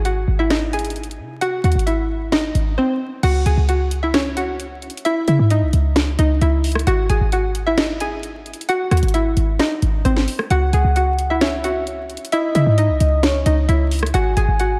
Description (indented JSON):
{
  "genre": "hip hop, trap",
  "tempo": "132 BPM",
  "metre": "4/4",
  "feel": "half-time",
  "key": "C# harmonic minor",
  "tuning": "A4 = 440 Hz",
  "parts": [
    { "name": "hollow square pluck", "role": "melody", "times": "0.0-14.8 s", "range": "B#3 to G#5", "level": "-24 LUFS", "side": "equal", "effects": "chorus, analog delay" },
    { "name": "short 808-style bass", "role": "bass", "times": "0.0-14.8 s", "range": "G#1 to C#3", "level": "-20 LUFS", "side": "equal", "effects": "none" },
    { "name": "trap drum kit", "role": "drums", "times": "0.1-14.7 s", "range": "crash cymbal, hi-hat, rim click, snare drum", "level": "-26 LUFS", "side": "equal", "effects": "overdrive" },
    { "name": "soft octave-layered synth lead", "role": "second line", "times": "10.5-14.8 s", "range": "C#5 to G#5", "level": "-26 LUFS", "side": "equal", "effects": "chorus, analog delay" }
  ],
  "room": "moderate plate reverb, RT60 2.4 s",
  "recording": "dreamy mix soaked in reverb, vinyl crackle",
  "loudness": "-18 LUFS",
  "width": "mono",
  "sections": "0.0-3.2 A section; 3.2-14.8 B section",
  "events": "drums muted 2.8-3.2",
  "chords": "0.0 G#7; 3.2 C#madd9; 6.9 G#7; 10.5 C#madd9; 14.1 G#7(no3)"
}